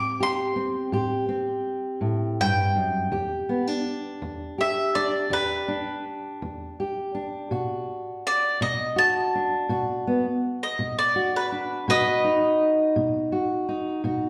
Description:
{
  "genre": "acoustic country blues, solo or duo",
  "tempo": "55 BPM (dotted quarters)",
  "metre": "12/8",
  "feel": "straight",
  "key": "E minor",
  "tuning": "A4 = 440 Hz",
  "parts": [
    { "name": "mandolin", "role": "melody", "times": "0.0-13.3 s", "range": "B4 to D6", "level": "-26 LUFS", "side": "equal", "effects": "none" },
    { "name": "fingerpicked steel-string acoustic guitar", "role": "accompaniment", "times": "0.0-14.3 s", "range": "E2 to G4", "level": "-28 LUFS", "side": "equal", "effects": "none" }
  ],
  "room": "wet recital hall reverb, RT60 1.5 s",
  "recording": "recorded in a church or concert hall",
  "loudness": "-25 LUFS",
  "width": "mono",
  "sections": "0.0-14.3 A section",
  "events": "none",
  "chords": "0.0 Am7; 3.1 Em7; 7.5 B7#9"
}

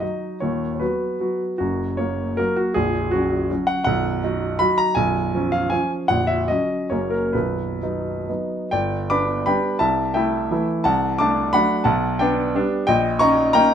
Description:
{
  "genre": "classical, romantic triple-time dance for piano with dotted rhythms",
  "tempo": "125-190 BPM",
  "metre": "3/4",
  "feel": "rubato",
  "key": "B major, G major from 8.7 s",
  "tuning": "A4 = 441 Hz",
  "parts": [
    { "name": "warm baby grand piano", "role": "solo", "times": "0.0-13.7 s", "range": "A#0 to D6", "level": "-19 LUFS", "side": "equal", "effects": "none" }
  ],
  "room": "light reverb",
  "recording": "none",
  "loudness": "-19 LUFS",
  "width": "side -8 dB against mid",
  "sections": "0.0-8.7 A section; 8.7-13.7 B section",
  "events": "none",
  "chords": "0.4 B/D#; 1.6 F#; 2.7 F#/A#; 3.9 B; 5.0 C#7/B; 6.1 F#/A#; 6.9 F#; 7.3 B; 8.7 G; 9.8 Am/C; 10.9 D7/C; 11.9 G/B; 12.9 D#7/A#"
}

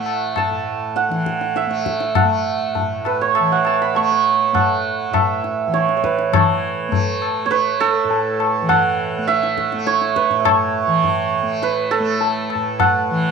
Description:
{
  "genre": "indian classical, Hindustani",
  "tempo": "101 BPM",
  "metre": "7/4",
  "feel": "straight",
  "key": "A raga bhupali",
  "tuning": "A4 = 440 Hz",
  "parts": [
    { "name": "santur", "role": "melody", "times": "0.0-13.3 s", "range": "A4 to C#6", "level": "-18 LUFS", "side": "right 8 dB", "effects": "none" },
    { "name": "tanpura", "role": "drone", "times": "0.0-13.3 s", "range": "A2 to A3", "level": "-25 LUFS", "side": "left 2 dB", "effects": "none" },
    { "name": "tabla", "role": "percussion", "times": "0.1-13.0 s", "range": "none", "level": "-21 LUFS", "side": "left 11 dB", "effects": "none" }
  ],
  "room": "moderate echo chamber reverb, RT60 1.7 s, small room ambience",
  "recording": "1960s-style stereo with parts hard left and right",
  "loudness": "-16 LUFS",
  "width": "side -5 dB against mid",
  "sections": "0.0-6.3 A section; 6.3-13.3 B section",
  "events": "speeding up 0.0-13.3",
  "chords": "none"
}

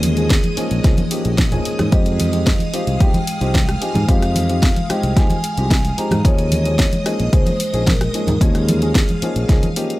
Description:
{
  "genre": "nu-disco, nu disco",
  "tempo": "111 BPM",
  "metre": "4/4",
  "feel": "straight",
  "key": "unclear",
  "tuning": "A4 = 440 Hz",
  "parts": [
    { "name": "vibraphone with soft mallets", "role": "melody", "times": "0.0-10.0 s", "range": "Ab4 to Bb5", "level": "-26 LUFS", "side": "equal", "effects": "analog delay" },
    { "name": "dark baby grand piano", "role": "accompaniment", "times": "0.0-10.0 s", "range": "F3 to Ab4", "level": "-24 LUFS", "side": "left 1 dB", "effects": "none" },
    { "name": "string machine, full ensemble", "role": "sustained chords", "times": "0.0-10.0 s", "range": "Ab3 to Eb6", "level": "-27 LUFS", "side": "right 1 dB", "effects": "ensemble chorus, sidechain pumping" },
    { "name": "fingered electric bass", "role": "bass", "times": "0.0-9.6 s", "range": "Bb1 to Ab2", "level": "-20 LUFS", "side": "equal", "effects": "tube saturation" },
    { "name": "house drum kit", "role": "drums", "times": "0.0-10.0 s", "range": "hi-hat, rim click, snare drum", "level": "-23 LUFS", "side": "equal", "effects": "overdrive" },
    { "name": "congas", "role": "percussion", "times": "0.0-9.7 s", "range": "none", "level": "-24 LUFS", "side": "equal", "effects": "none" },
    { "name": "electronic kick drum", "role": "drums", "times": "0.3-9.6 s", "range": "none", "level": "-16 LUFS", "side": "equal", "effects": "overdrive" }
  ],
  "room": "little or no reverb",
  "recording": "dry, gritty hardware recording, transformer saturation",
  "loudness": "-14 LUFS",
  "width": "side -18 dB against mid",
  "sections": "0.0-10.0 A section",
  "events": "none",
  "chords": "0.0 Eb7sus4; 1.9 Fm7; 6.2 Eb7sus4"
}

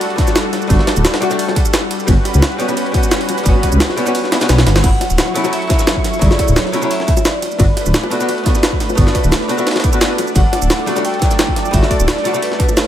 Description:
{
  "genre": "liquid drum and bass",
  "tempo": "174 BPM",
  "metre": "4/4",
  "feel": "straight",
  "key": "G lydian",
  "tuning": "A4 = 440 Hz",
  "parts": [
    { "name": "archtop guitar, miked and amplified", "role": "accompaniment", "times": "0.0-12.6 s", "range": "C#3 to F#4", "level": "-20 LUFS", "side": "left 1 dB", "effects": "tape echo" },
    { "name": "lush unison pad", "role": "sustained chords", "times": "0.0-12.9 s", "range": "F#3 to C#6", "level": "-22 LUFS", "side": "equal", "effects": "chorus, sidechain pumping" },
    { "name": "jungle sampler-style drum kit", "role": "drums", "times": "0.0-12.8 s", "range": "crash cymbal, hi-hat, shaker, snare drum", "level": "-20 LUFS", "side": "right 1 dB", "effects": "none" },
    { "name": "jungle sampler-style drum kit", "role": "drums", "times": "0.0-12.9 s", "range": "hi-hat, ride cymbal, snare drum", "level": "-23 LUFS", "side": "right 1 dB", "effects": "high-pass filter on snare, high-pass filter on cymbals, high-pass filter on hats" },
    { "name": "electronic kick drum", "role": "drums", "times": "0.2-12.7 s", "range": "none", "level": "-15 LUFS", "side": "equal", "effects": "none" },
    { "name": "bongos", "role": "percussion", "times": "0.3-12.8 s", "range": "none", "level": "-26 LUFS", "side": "left 6 dB", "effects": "none" },
    { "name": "dark detuned saw bass", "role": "bass", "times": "0.7-12.1 s", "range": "D1 to C#2", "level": "-14 LUFS", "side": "equal", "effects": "tube saturation" },
    { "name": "vibraphone with medium hard mallets", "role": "melody", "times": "4.8-7.9, 10.4-12.9 s", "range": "B4 to G5", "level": "-23 LUFS", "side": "equal", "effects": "tape echo" }
  ],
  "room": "digital ambience",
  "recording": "none",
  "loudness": "-12 LUFS",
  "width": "side -11 dB against mid",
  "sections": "0.0-4.8 A section; 4.8-12.9 A section",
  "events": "drop 0.0-4.8, 4.8-12.9; kick drops out 4.1-4.8; drum fill 4.3-4.8",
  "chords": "0.0 Dadd11; 1.9 Gmaj7#11; 4.8 Dmaj9; 7.4 Gmaj9 (rootless); 10.4 Dadd11"
}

